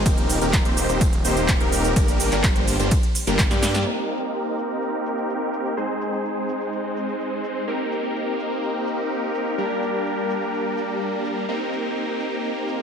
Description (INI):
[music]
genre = EDM, festival progressive house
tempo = 126 BPM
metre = 4/4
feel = straight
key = Eb major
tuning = A4 = 440 Hz
[part]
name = supersaw chords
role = riff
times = 0.0-12.8 s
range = G3 to D5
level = -23 LUFS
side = equal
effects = vintage 12-bit sampler grit, sidechain pumping, low-pass filter, ping-pong delay
[part]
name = detuned saw bass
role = bass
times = 0.0-3.8 s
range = Eb1 to G2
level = -25 LUFS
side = equal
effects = sidechain pumping
[part]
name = big-room dance drum kit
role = drums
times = 0.1-12.8 s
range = cabasa, crash cymbal, handclaps, hi-hat, ride cymbal, snare drum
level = -26 LUFS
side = right 2 dB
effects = overdrive, low-pass filter on hats, low-pass filter on perc, low-pass filter on cymbals, low-pass filter on snare, low-pass filter on room
[part]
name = electronic kick drum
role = drums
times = 0.1-3.5 s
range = none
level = -21 LUFS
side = equal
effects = overdrive
[sound]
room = light reverb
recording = none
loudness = -20 LUFS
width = side -7 dB against mid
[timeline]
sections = 0.0-3.9 A section; 3.9-12.8 B section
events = drop 0.0-3.9; drum fill 3.4-3.9; band accent 3.7; filter sweep on supersaw synth 3.9-12.8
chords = 0.1 Eb6; 2.0 Gm; 3.9 Eb6; 5.8 Ab; 7.7 Eb6; 9.6 Gm; 11.5 Eb6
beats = | 0.06 0.53 1.01 1.49 | 1.96 2.44 2.91 3.39 | 3.87 4.34 4.82 5.29 | 5.77 6.25 6.72 7.20 | 7.68 8.15 8.63 9.11 | 9.58 10.06 10.53 11.01 | 11.49 11.96 12.44